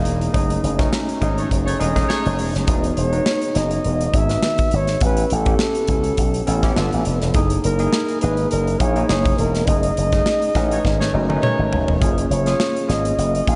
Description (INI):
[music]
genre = polished 1980s jazz-funk pop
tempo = 103 BPM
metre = 4/4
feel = swing 54% on 16ths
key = unclear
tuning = A4 = 436 Hz
[part]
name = tine electric piano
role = accompaniment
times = 0.0-13.6 s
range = D#3 to B4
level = -25 LUFS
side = equal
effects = overdrive, lush chorus
[part]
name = slap bass with an envelope filter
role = bass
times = 0.0-13.6 s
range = E1 to C#2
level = -24 LUFS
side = equal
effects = none
[part]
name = modern studio drum kit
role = drums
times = 0.1-13.6 s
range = hi-hat, kick drum, snare drum, toms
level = -24 LUFS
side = equal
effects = none
[part]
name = warm horn section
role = second line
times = 1.4-2.3, 10.7-11.6 s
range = A3 to C#5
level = -31 LUFS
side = equal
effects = none
[part]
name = breathy flugelhorn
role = melody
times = 3.0-13.6 s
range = A4 to E#5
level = -26 LUFS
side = equal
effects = diffuse ambient delay
[sound]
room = moderate huge ambient reverb, RT60 4.3 s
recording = dreamy mix soaked in reverb, nothing above 10.8 kHz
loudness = -19 LUFS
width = mono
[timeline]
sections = 0.0-12.0 A section; 12.0-13.6 A section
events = band accent 0.3-2.7, 9.7-12.0; drum fill 10.9-12.0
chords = 0.3 F#m13; 2.7 Emaj7; 5.0 A7; 6.8 G9; 7.4 F#13; 9.7 B13/F#; 12.0 F#maj7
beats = | 0.34 0.93 1.51 2.10 | 2.68 3.26 3.85 4.43 | 5.02 5.60 6.18 6.77 | 7.35 7.93 8.52 9.10 | 9.69 10.27 10.85 11.44 | 12.02 12.60 13.19